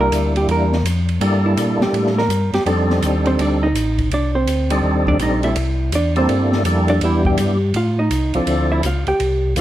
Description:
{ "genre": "soul jazz organ trio", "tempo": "165 BPM", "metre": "4/4", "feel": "swing 64% on 8ths", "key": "C mixolydian", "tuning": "A4 = 440 Hz", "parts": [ { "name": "percussive tonewheel organ", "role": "melody", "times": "0.0-9.6 s", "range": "F3 to A4", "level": "-20 LUFS", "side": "equal", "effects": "slow rotary speaker, overdrive, chorus vibrato, plate reverb" }, { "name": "hollow-body jazz guitar", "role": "accompaniment", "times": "0.0-9.5 s", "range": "C4 to G5", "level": "-20 LUFS", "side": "right 2 dB", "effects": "none" }, { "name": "mellow tonewheel organ", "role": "bass", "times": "0.0-9.6 s", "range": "A1 to Bb2", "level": "-19 LUFS", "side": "left 1 dB", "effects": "chorus vibrato, slow rotary speaker" }, { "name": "open jazz drum kit", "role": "drums", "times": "0.1-9.6 s", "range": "hi-hat, kick drum, ride cymbal, snare drum", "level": "-26 LUFS", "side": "equal", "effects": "none" } ], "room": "moderate studio reverb, RT60 0.9 s", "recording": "none", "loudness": "-15 LUFS", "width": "side -13 dB against mid", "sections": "0.0-9.6 A section", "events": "hollow-body jazz guitar solo 0.0-9.6", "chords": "0.0 C13 (rootless); 2.7 F13; 5.6 C13; 7.0 Em7; 7.7 Am; 8.5 Dm7" }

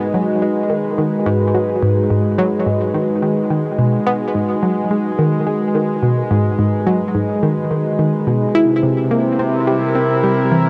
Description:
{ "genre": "ambient, sequencer-driven space music", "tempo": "107 BPM", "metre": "4/4", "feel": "straight", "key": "unclear", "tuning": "A4 = 440 Hz", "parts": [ { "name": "sweeping resonant pad", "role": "sustained chords", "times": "0.0-10.7 s", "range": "C3 to B4", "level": "-20 LUFS", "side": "equal", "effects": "chorus" }, { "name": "analog pluck", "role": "riff", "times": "0.0-10.7 s", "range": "G#2 to E4", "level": "-20 LUFS", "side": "equal", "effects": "chorus, tape echo" } ], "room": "wet huge ambient reverb, RT60 7.8 s", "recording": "cassette tape", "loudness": "-17 LUFS", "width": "mono", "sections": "0.0-10.7 A section", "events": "filter sweep on synth arpeggio sound 0.0-10.7", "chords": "0.0 G#m7; 8.6 C7" }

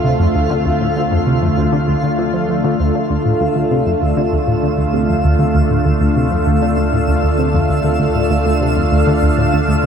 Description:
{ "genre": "ambient, sequencer-driven space music", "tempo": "98 BPM", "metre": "4/4", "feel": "straight", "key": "D minor", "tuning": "A4 = 440 Hz", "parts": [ { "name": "lush unison pad", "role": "sustained chords", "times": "0.0-9.9 s", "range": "D3 to F5", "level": "-16 LUFS", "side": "equal", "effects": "chorus, phaser" }, { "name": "tight sequenced synth", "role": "riff", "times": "0.0-9.9 s", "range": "D2 to F3", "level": "-17 LUFS", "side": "equal", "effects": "chorus, ping-pong delay" }, { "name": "warm sub bass", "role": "bass", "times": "0.0-9.9 s", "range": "D2", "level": "-23 LUFS", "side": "equal", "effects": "none" }, { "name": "twinkling granular texture", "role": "texture", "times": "0.0-9.9 s", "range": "F4 to E6", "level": "-30 LUFS", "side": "right 1 dB", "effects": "built-in reverb" } ], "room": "wet huge ambient reverb, RT60 7.2 s", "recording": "dreamy mix soaked in reverb", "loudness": "-13 LUFS", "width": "side -7 dB against mid", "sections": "0.0-9.9 A section", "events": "none", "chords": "0.0 Dm7" }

